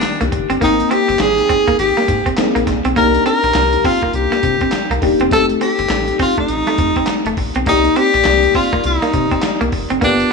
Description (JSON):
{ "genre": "R&B, new jack swing", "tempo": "102 BPM", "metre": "4/4", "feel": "swing 61% on 16ths", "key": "C minor", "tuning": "A4 = 440 Hz", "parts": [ { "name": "bright tenor saxophone", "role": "melody", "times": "0.0-10.3 s", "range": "D4 to Bb4", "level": "-16 LUFS", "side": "left 1 dB", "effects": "tape echo" }, { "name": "FM electric piano", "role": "accompaniment", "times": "0.0-10.3 s", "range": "Eb3 to G5", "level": "-20 LUFS", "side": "left 5 dB", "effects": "chorus, phaser" }, { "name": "dusty soul sampler-style drum kit", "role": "drums", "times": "0.0-10.3 s", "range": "handclaps, hi-hat, kick drum, snare drum", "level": "-22 LUFS", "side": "left 1 dB", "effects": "gated reverb" }, { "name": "clean electric guitar", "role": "riff", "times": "0.2-10.3 s", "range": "A3 to C4", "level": "-21 LUFS", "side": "right 4 dB", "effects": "lush chorus" }, { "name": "round analog bass", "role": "bass", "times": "0.2-10.2 s", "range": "Eb1 to C3", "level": "-22 LUFS", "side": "left 1 dB", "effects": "none" } ], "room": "light reverb", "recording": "none", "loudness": "-13 LUFS", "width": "side -4 dB against mid", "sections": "0.0-10.3 A section", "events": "none", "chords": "0.0 Cm7; 0.6 Abmaj7; 3.0 Cm7; 5.3 F7; 7.7 Cm7" }